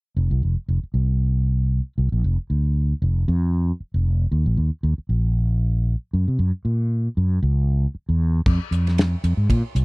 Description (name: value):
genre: electric jazz fusion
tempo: 116 BPM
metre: 4/4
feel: swing 56% on 16ths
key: unclear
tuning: A4 = 437 Hz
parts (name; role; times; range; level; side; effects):
- fretless electric bass; bass; 0.2-9.8 s; F1 to C3; -19 LUFS; equal; none
- damped 70s drum kit; drums; 8.5-9.8 s; crash cymbal, hi-hat, kick drum, ride cymbal, snare drum; -23 LUFS; equal; none
room: little or no reverb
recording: dry, close 1970s-style studio recording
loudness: -19 LUFS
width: side -31 dB against mid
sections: 0.2-8.5 A section; 8.5-9.8 B section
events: none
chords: none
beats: | 0.16 0.68 1.20 1.72 | 2.24 2.76 3.28 3.79 | 4.31 4.83 5.35 5.87 | 6.39 6.91 7.42 7.94 | 8.46 8.98 9.49